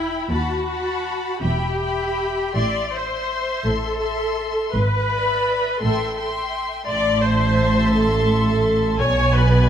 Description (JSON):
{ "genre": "classical, slow romantic movement for string orchestra", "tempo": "52-58 BPM (dotted quarters)", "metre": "6/8", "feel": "rubato", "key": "unclear", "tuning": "A4 = 440 Hz", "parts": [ { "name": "rich chamber violin section", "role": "melody", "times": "0.0-9.7 s", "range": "G#5 to C6", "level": "-29 LUFS", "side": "left 4 dB", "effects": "none" }, { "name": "warm studio violin section", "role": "second line", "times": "0.0-9.7 s", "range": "D5 to A5", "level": "-31 LUFS", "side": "left 1 dB", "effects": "none" }, { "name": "warm studio viola section", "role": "accompaniment", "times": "0.0-9.7 s", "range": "E4 to D5", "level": "-22 LUFS", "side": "left 1 dB", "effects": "none" }, { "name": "warm studio double bass section", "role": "bass", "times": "0.0-9.7 s", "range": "E1 to D#2", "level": "-23 LUFS", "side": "right 2 dB", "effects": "none" }, { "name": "warm symphonic cello section", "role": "bass", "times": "0.0-9.7 s", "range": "D#2 to B2", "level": "-23 LUFS", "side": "right 1 dB", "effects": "none" } ], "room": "moderate recital hall reverb, RT60 1.8 s", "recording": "close, detailed microphones", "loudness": "-18 LUFS", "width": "side -9 dB against mid", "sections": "0.0-9.7 A section", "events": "none", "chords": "0.3 B7/D#; 1.4 Em; 2.6 Am; 4.7 E7/G#; 5.8 Am7; 6.9 Am; 9.0 G#dim/B" }